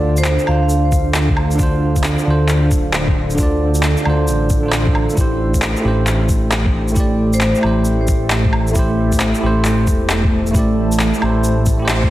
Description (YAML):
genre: future garage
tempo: 134 BPM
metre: 4/4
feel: swing 65% on 16ths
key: D minor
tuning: A4 = 440 Hz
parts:
  - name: bell-like tine electric piano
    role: accompaniment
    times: 0.0-12.1 s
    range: D3 to D5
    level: -20 LUFS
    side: right 2 dB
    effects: vintage 12-bit sampler grit, sidechain pumping, tape echo
  - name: granular cloud pad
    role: sustained chords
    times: 0.0-12.1 s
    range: A3 to A5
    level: -22 LUFS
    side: right 1 dB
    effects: built-in reverb, sidechain pumping
  - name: dark detuned saw bass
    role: bass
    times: 0.0-12.1 s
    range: D1 to D2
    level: -18 LUFS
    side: equal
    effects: sidechain pumping
  - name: vibraphone with medium hard mallets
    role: melody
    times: 0.2-0.9, 7.3-7.6 s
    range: C5 to F5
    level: -26 LUFS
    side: equal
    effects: tape echo
  - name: electronic shaker, handclaps and woodblock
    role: drums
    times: 0.2-12.0 s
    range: none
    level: -21 LUFS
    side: equal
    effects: overdrive
  - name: electronic kick drum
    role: drums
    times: 0.9-12.1 s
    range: none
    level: -18 LUFS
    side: equal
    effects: overdrive
room: moderate lush hall reverb, RT60 1.6 s, digital ambience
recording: heavily compressed radio sound, multiband compression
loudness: -13 LUFS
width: side -15 dB against mid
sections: 0.0-12.1 A section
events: band accent 11.9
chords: 0.0 Dm7; 5.2 Am7